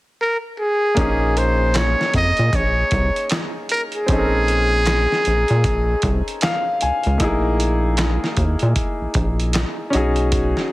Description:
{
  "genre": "R&B, neo-soul",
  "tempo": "77 BPM",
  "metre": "4/4",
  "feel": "swing 61% on 16ths",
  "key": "Bb minor",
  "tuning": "A4 = 440 Hz",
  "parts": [
    { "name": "trumpet with metal mute", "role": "melody", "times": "0.2-6.2 s", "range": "Ab4 to Eb5", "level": "-20 LUFS", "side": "equal", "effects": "none" },
    { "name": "bright baby grand piano", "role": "accompaniment", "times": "0.9-10.7 s", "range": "A3 to Ab5", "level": "-23 LUFS", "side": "left 1 dB", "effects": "none" },
    { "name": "rubbery square bass", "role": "bass", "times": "1.0-10.6 s", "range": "Bb1 to Bb2", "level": "-19 LUFS", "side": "equal", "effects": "none" },
    { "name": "dusty soul sampler-style drum kit", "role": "drums", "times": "1.0-10.6 s", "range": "handclaps, hi-hat, kick drum, snare drum", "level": "-23 LUFS", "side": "equal", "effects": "none" }
  ],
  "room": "light reverb",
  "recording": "heavily compressed radio sound",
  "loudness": "-16 LUFS",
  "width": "side -19 dB against mid",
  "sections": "1.0-10.7 A section",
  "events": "grand piano fill 6.0-7.2",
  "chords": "0.0 N.C.; 1.0 Bbm11; 7.2 Emaj7#11/A#; 9.9 B69"
}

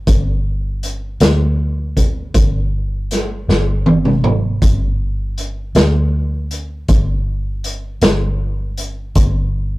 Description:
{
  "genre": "slow blues",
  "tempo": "53 BPM (dotted quarters)",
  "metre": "12/8",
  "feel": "straight",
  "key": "unclear",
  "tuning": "A4 = 440 Hz",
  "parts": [
    { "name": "vintage muted fingered electric bass", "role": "bass", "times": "0.0-9.8 s", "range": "G1 to D2", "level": "-18 LUFS", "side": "equal", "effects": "none" },
    { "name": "vintage drum kit", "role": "drums", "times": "0.1-9.3 s", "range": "hi-hat, kick drum, snare drum, toms", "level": "-15 LUFS", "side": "equal", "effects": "none" }
  ],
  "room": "moderate booth ambience, RT60 0.2 s",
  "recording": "rough rehearsal-room recording, warm saturation",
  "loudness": "-14 LUFS",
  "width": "side -20 dB against mid",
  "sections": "0.0-4.6 A section; 4.6-9.8 B section",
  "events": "drum fill 3.5-4.6",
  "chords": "none"
}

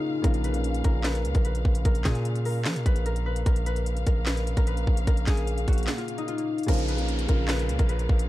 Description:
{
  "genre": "hip hop, trap",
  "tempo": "149 BPM",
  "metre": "4/4",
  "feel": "half-time",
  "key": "Bb phrygian",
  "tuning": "A4 = 441 Hz",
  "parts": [
    { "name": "concert harp", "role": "melody", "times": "0.0-8.3 s", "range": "Eb4 to Cb5", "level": "-32 LUFS", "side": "left 3 dB", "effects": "digital delay" },
    { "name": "dark concert grand piano", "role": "accompaniment", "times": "0.0-3.5, 6.7-8.3 s", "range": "Bb2 to F4", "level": "-34 LUFS", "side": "right 1 dB", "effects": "none" },
    { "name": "muted studio string section", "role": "sustained chords", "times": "0.0-8.3 s", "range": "Bb2 to F5", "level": "-37 LUFS", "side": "equal", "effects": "none" },
    { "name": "hard-hitting 808-style bass", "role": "bass", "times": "0.2-8.3 s", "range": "Bb1 to F3", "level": "-27 LUFS", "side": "equal", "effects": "none" },
    { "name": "trap drum kit", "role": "drums", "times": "0.2-8.3 s", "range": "crash cymbal, handclaps, hi-hat, kick drum, snare drum", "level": "-25 LUFS", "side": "equal", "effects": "none" },
    { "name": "swell and downlifter", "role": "sound effects", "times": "4.8-8.3 s", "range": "none", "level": "-39 LUFS", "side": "right 1 dB", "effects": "none" },
    { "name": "dark brass ensemble", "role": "stabs", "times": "6.7-7.0 s", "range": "Bb2 to F3", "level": "-38 LUFS", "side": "right 2 dB", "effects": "none" }
  ],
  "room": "little or no reverb",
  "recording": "dark, warm production",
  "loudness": "-23 LUFS",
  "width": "side -16 dB against mid",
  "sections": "0.0-6.7 A section; 6.7-8.3 B section",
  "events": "swell 4.8-6.7; break 5.9-6.7",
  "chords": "0.0 Bbm"
}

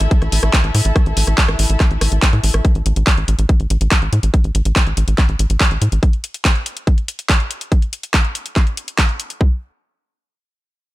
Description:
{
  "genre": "psychedelic trance",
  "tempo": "142 BPM",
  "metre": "4/4",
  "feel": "straight",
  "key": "unclear",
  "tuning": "A4 = 435 Hz",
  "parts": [
    { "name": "tight sequencer bass", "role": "bass", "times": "0.0-6.0 s", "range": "A1 to A2", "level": "-16 LUFS", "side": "equal", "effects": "none" },
    { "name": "drum and bass drum kit", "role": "drums", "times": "0.0-9.4 s", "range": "handclaps, hi-hat, rim click", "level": "-20 LUFS", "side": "equal", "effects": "overdrive" },
    { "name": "warm studio string section", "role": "texture", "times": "0.0-2.6 s", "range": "E4 to E5", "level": "-26 LUFS", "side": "left 1 dB", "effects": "sidechain pumping" },
    { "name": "electronic kick drum", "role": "drums", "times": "0.1-9.5 s", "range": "none", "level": "-14 LUFS", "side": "equal", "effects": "overdrive" }
  ],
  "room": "digital ambience",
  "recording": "none",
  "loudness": "-14 LUFS",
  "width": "side -17 dB against mid",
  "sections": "0.0-9.4 A section; 9.4-10.9 B section",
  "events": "filter sweep on analog synth bass 0.0-6.0",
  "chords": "0.0 A5; 9.4 N.C."
}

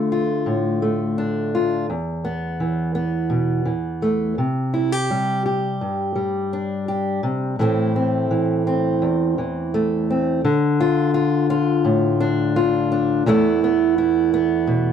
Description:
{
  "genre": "folk",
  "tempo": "84 BPM",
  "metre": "4/4",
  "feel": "straight",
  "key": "unclear",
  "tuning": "A4 = 440 Hz",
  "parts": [
    { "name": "fingerpicked steel-string acoustic guitar", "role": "solo", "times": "0.0-14.9 s", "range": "E2 to G4", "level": "-18 LUFS", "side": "equal", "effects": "none" }
  ],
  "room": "light reverb",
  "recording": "dry, close 1970s-style studio recording",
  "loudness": "-18 LUFS",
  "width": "side -8 dB against mid",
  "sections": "0.0-10.4 A section; 10.4-14.9 B section",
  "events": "none",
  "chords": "0.0 Dm; 1.9 Esus4; 4.4 Csus2; 7.6 Am; 10.4 Dm; 13.3 Esus4"
}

